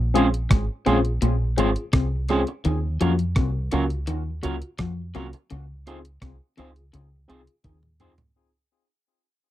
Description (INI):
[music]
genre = lovers rock reggae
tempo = 84 BPM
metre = 4/4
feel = straight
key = unclear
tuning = A4 = 440 Hz
[part]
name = deep dub fingered electric bass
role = bass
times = 0.0-8.1 s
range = Ab1 to F2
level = -25 LUFS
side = equal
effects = none
[part]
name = tine electric piano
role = accompaniment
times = 0.1-8.1 s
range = Bb3 to Ab4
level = -26 LUFS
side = left 3 dB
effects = medium stereo tremolo, tape echo
[part]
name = electric guitar through a small old amp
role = stabs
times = 0.1-8.2 s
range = Gb3 to C5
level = -25 LUFS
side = right 5 dB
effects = none
[part]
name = crisp 8-bit digital drum machine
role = drums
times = 0.2-8.3 s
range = hi-hat, kick drum, rim click, toms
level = -24 LUFS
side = equal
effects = overdrive, tape echo
[part]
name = electric guitar through a small old amp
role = riff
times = 0.5-7.9 s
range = Ab2 to F3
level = -29 LUFS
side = left 4 dB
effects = none
[sound]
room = little or no reverb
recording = dry, close 1970s-style studio recording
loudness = -21 LUFS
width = side -13 dB against mid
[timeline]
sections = 0.0-8.4 A section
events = fade-out 0.0-8.4; drum fill 7.6-8.4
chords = 0.0 Bbm9; 2.6 Ebm9; 5.5 Dbmaj7